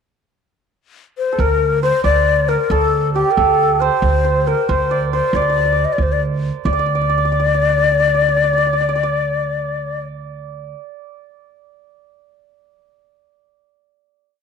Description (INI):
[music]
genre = Persian modal ensemble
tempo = 92 BPM (dotted quarters)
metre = 6/8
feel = straight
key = D dastgah homayun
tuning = A4 = 436 Hz
[part]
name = breathy ney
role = melody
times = 1.2-10.0 s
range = G4 to Eb5+44c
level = -17 LUFS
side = left 8 dB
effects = none
[part]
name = santur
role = second line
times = 1.3-11.5 s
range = G4 to D5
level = -21 LUFS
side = right 13 dB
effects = none
[part]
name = upright bass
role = bass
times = 1.4-10.7 s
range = D2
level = -20 LUFS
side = right 2 dB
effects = none
[sound]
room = moderate spring reverb, RT60 1.3 s, studio reverb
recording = 1960s-style stereo with parts hard left and right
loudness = -14 LUFS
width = side -6 dB against mid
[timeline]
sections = 0.1-1.4 pickup bar; 1.4-6.6 A section; 6.6-9.3 final note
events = none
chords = none